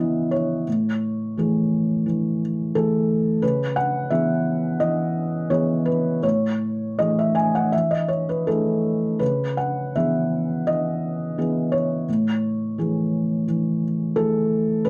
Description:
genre	neoclassical minimalist piano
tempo	80-90 BPM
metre	4/4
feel	rubato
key	unclear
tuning	A4 = 440 Hz
part	felt-muted upright piano	solo	0.0-14.9 s	A2 to G#5	-22 LUFS	equal	none
room	light reverb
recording	dark, warm production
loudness	-22 LUFS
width	mono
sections	0.0-14.9 A section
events	none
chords	0.0 C#m7; 0.7 Amaj7; 3.4 C#m7; 6.2 Amaj7; 9.2 C#m7; 12.1 Amaj7

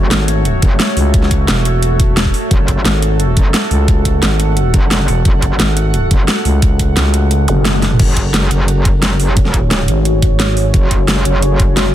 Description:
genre	dark technical drum and bass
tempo	175 BPM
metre	4/4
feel	straight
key	F# minor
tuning	A4 = 442 Hz
part	deep dark ambient pad	sustained chords	0.0-11.9 s	A3 to F#5	-20 LUFS	right 1 dB	chorus, built-in reverb, vintage 12-bit sampler grit, sidechain pumping
part	metallic wobble bass	bass	0.0-11.9 s	F#1	-15 LUFS	equal	chorus, overdrive
part	growling FM bass	bass	0.1-10.7 s	E1 to C#2	-14 LUFS	equal	none
part	dubstep drum kit	drums	0.1-11.8 s	crash cymbal, hi-hat, snare drum, toms	-17 LUFS	equal	none
part	electronic kick drum	drums	0.6-11.7 s	none	-13 LUFS	equal	none
part	zap	sound effects	7.5-7.6 s	none	-23 LUFS	equal	none
part	granular cloud pad	texture	8.8-11.9 s	F#4 to C#5	-23 LUFS	left 2 dB	built-in reverb, sidechain pumping
room	digital ambience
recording	dense, heavily limited modern master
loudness	-10 LUFS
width	side -12 dB against mid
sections	0.0-8.0 A section; 8.0-11.9 A section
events	drop 0.0-8.0, 8.0-11.9; kick drops out 7.3-8.0; drum fill 7.7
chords	0.0 F#madd9

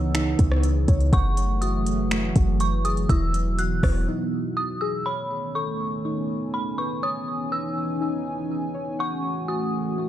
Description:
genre	hip hop, atmospheric cloud-rap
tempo	122 BPM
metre	4/4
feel	half-time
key	unclear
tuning	A4 = 440 Hz
part	dark detuned synth bell	melody	0.0-9.9 s	B5 to F#6	-30 LUFS	equal	chorus, ping-pong delay
part	dark analog pad	sustained chords	0.0-10.1 s	B2 to G#5	-28 LUFS	right 1 dB	chorus, sidechain pumping
part	muted felt-like synth keys	arpeggios	0.0-10.1 s	A3 to F#5	-32 LUFS	left 3 dB	chorus, ping-pong delay
part	clean 808-style bass	bass	0.0-4.1 s	E1 to C#2	-23 LUFS	equal	none
part	smooth R&B drum kit	drums	0.1-3.9 s	finger snaps, hi-hat, kick drum, rim click	-24 LUFS	equal	none
room	little or no reverb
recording	dark, warm production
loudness	-22 LUFS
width	side -12 dB against mid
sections	0.0-5.1 A section; 5.1-10.1 B section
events	break 4.1-5.1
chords	0.0 C#m9; 1.1 F#m9; 3.1 Emaj9; 5.1 B13; 7.0 C#m9; 9.0 F#m9

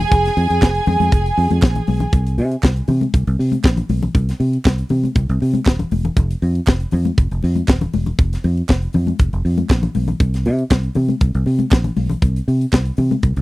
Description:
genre	disco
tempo	119 BPM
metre	4/4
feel	straight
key	unclear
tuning	A4 = 440 Hz
part	clear studio violin section	second line	0.0-2.1 s	Ab4 to Ab5	-19 LUFS	right 2 dB	tape echo
part	fingered electric bass	bass	0.0-13.4 s	Eb1 to C3	-17 LUFS	equal	none
part	tight funk drum kit	drums	0.0-13.4 s	hi-hat, kick drum, snare drum	-14 LUFS	equal	none
part	congas	percussion	0.1-13.2 s	none	-23 LUFS	left 5 dB	none
part	group handclap	percussion	0.6-12.9 s	none	-32 LUFS	right 7 dB	none
room	little or no reverb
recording	dry, close 1970s-style studio recording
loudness	-15 LUFS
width	side -19 dB against mid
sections	0.0-2.1 A section; 2.1-13.4 B section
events	none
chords	0.0 Fm; 2.1 N.C.

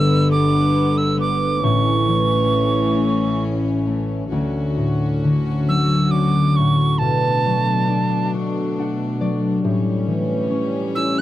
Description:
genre	celtic folk, Celtic slow air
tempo	45 BPM (dotted quarters)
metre	6/8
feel	rubato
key	D major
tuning	A4 = 442 Hz
part	bright reedy wooden whistle	melody	0.0-11.2 s	A5 to F#6	-22 LUFS	right 4 dB	none
part	concert harp	accompaniment	0.0-11.2 s	G1 to F#5	-19 LUFS	left 1 dB	none
part	bright chamber string section	sustained chords	0.0-11.2 s	D2 to F#4	-23 LUFS	left 1 dB	none
room	light reverb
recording	dry, close 1970s-style studio recording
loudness	-17 LUFS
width	side -14 dB against mid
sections	0.0-4.3 A section; 4.3-11.2 B section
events	harp fill 8.3-9.6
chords	0.0 G; 1.6 A; 4.3 Dmaj7; 7.0 Bm7; 9.6 A7

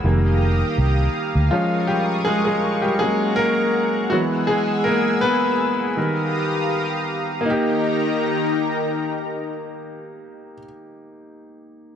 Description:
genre	contemporary R&B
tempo	81 BPM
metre	4/4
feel	swing 54% on 16ths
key	Eb mixolydian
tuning	A4 = 441 Hz
part	clear grand piano	accompaniment	0.0-12.0 s	Eb3 to Cb5	-21 LUFS	equal	none
part	lush unison pad	sustained chords	0.0-10.6 s	Eb3 to Fb6	-25 LUFS	left 1 dB	chorus
part	vintage muted fingered electric bass	bass	0.0-1.5 s	F1 to D2	-17 LUFS	equal	none
room	light reverb, studio ambience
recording	dark, warm production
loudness	-18 LUFS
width	side -8 dB against mid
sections	0.0-7.4 A section; 7.4-10.4 B section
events	grand piano solo 0.0-7.4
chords	0.0 F9sus4; 1.5 Eb9sus4; 3.0 Ab9sus4; 4.1 Gb9sus4; 6.0 F9sus4; 7.4 Eb

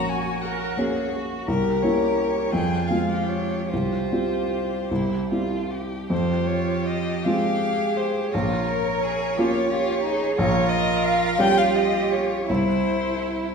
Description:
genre	classical, slow romantic movement for piano quartet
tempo	48-61 BPM (dotted quarters)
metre	6/8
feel	rubato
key	F minor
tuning	A4 = 440 Hz
part	warm violin	melody	0.0-13.5 s	Bb4 to Bb5	-26 LUFS	left 3 dB	none
part	clear violin	second line	0.0-13.5 s	Eb4 to Bb4	-29 LUFS	left 3 dB	none
part	rich cello	second line	0.0-13.5 s	E4 to Bb4	-28 LUFS	right 5 dB	none
part	warm baby grand piano	accompaniment	0.0-13.5 s	Bb1 to G4	-24 LUFS	right 1 dB	none
room	wet recital hall reverb, RT60 1.4 s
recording	heard from further back in the room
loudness	-21 LUFS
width	side -5 dB against mid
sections	0.0-6.1 A section; 6.1-13.5 B section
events	none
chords	0.0 Gb/Bb; 1.5 C7b9; 2.5 Fm; 3.7 Csus4; 4.9 C; 6.1 Fm; 8.3 Bbm; 10.4 Gdim/Bb; 12.5 C

